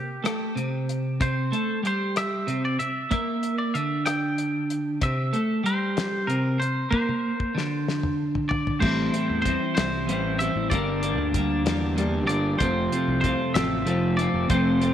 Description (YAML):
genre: indie rock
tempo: 63 BPM (dotted quarters)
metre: 6/8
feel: straight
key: C mixolydian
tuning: A4 = 440 Hz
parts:
  - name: twangy electric guitar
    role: melody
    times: 0.0-14.9 s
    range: G4 to G5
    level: -29 LUFS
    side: equal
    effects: none
  - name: twelve-string electric guitar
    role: riff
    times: 0.0-14.9 s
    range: F2 to E4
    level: -25 LUFS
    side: equal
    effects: double-tracked left and right
  - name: cloth-damped thuddy drum kit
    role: drums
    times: 0.3-14.9 s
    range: crash cymbal, hi-hat, kick drum, rim click, snare drum, toms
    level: -29 LUFS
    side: left 2 dB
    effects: none
  - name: fuzz fingered electric bass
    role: bass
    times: 8.8-14.9 s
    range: F1 to E2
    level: -29 LUFS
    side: equal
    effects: overdrive
room: moderate echo chamber reverb, RT60 2.1 s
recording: 1960s-style stereo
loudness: -22 LUFS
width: side -10 dB against mid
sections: 0.0-8.8 A section; 8.8-14.9 B section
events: drum fill 6.9-8.8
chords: 0.0 C; 8.8 Am7; 10.7 Gm; 12.6 F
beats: 0.25 | 1.20 2.15 | 3.11 4.06 | 5.01 5.96 | 6.91 7.86 | 8.81 9.76 | 10.71 11.66 | 12.61 13.55 | 14.50